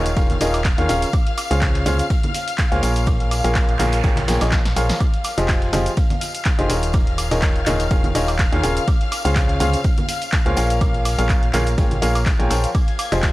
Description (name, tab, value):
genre	piano house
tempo	124 BPM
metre	4/4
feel	swing 54% on 16ths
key	unclear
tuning	A4 = 440 Hz
part	rich studio string section	sustained chords	0.0-13.3 s	F5 to Ab6	-29 LUFS	left 3 dB	sidechain pumping
part	bright upright piano	riff	0.0-13.3 s	Db3 to G5	-22 LUFS	equal	sidechain pumping, analog delay
part	organ-like FM bass	bass	0.0-13.3 s	Eb1 to Eb2	-21 LUFS	equal	sidechain pumping
part	punchy analog drum machine	drums	0.1-13.3 s	cabasa, handclaps, hi-hat, snare drum, woodblock	-27 LUFS	equal	none
part	tambourine and congas	percussion	0.1-13.3 s	none	-31 LUFS	right 2 dB	none
part	breakbeat sampler-style drum kit	drums	0.2-13.3 s	ride cymbal, snare drum	-37 LUFS	right 3 dB	none
part	electronic kick drum	drums	0.2-13.3 s	none	-19 LUFS	equal	none
part	noise sweep	sound effects	3.3-5.0 s	none	-33 LUFS	right 6 dB	none
room	little or no reverb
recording	dry, gritty hardware recording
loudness	-16 LUFS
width	side -18 dB against mid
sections	0.0-13.3 A section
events	noise sweep 3.3-5.0; drum fill 4.3-5.0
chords	0.0 Eb9sus4; 1.1 Dbmaj7; 2.8 Bbm7; 5.0 Fm9; 6.7 Eb9sus4; 8.9 Dbmaj7; 10.6 Bbm7; 12.7 Fm9